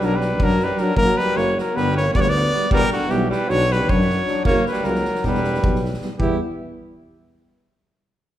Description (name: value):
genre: balkan folk, Balkan brass band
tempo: 309 BPM (eighths)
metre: 9/8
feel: straight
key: E dorian sharp4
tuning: A4 = 440 Hz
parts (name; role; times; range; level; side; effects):
- mellow trumpet; melody; 0.0-6.4 s; F#4 to D5; -22 LUFS; left 1 dB; none
- bright alto saxophone; second line; 0.0-6.4 s; D3 to E4; -26 LUFS; right 2 dB; none
- dark euphonium; accompaniment; 0.0-6.4 s; F#3 to G3; -28 LUFS; right 2 dB; none
- warm trombone; accompaniment; 0.0-6.4 s; A#3 to D4; -27 LUFS; left 5 dB; none
- mellow tuba; bass; 0.0-6.4 s; E1 to F#2; -24 LUFS; equal; none
- loose indie drum kit; percussion; 0.0-6.4 s; kick drum, snare drum; -25 LUFS; equal; none
room: wet recital hall reverb, RT60 1.5 s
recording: recorded in a church or concert hall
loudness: -17 LUFS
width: side -12 dB against mid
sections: 0.0-6.2 A section; 6.2-7.9 B section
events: none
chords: 0.0 Bm; 1.0 F#; 1.7 G; 2.7 Em; 3.5 Bm; 4.5 F#; 5.2 Em